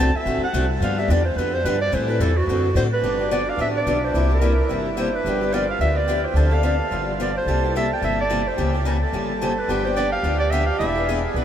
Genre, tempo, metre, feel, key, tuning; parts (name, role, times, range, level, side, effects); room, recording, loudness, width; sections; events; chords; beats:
acoustic string swing (jazz manouche); 216 BPM; 4/4; swing 58% on 8ths; G mixolydian; A4 = 440 Hz
breathy clarinet; melody; 0.0-11.3 s; F#4 to A5; -24 LUFS; right 2 dB
picked steel-string acoustic guitar; accompaniment; 0.0-11.4 s; C3 to A4; -25 LUFS; left 3 dB
upright bass; bass; 0.0-11.4 s; E1 to A2; -23 LUFS; equal
mellow accordion; second line; 3.0-11.4 s; D4 to B4; -27 LUFS; right 3 dB
wet huge ambient reverb, RT60 8.2 s; heard from further back in the room; -19 LUFS; side -10 dB against mid
0.0-3.0 A section; 3.0-11.4 B section
clarinet solo 0.0-3.0
0.0 D7; 0.8 G7; 1.9 Am7; 2.5 D7; 3.0 G7; 4.1 C7; 5.2 G7; 6.4 Dm7; 6.9 G7; 7.5 C7; 8.6 C#dim7; 9.7 G7; 10.8 E7
0.26 0.54 | 0.81 1.09 1.36 1.64 | 1.92 2.19 2.47 2.75 | 3.02 3.30 3.58 3.86 | 4.13 4.41 4.69 4.97 | 5.25 5.52 5.80 6.08 | 6.36 6.63 6.91 7.19 | 7.46 7.74 8.02 8.30 | 8.57 8.85 9.13 9.41 | 9.68 9.96 10.24 10.52 | 10.79 11.07 11.35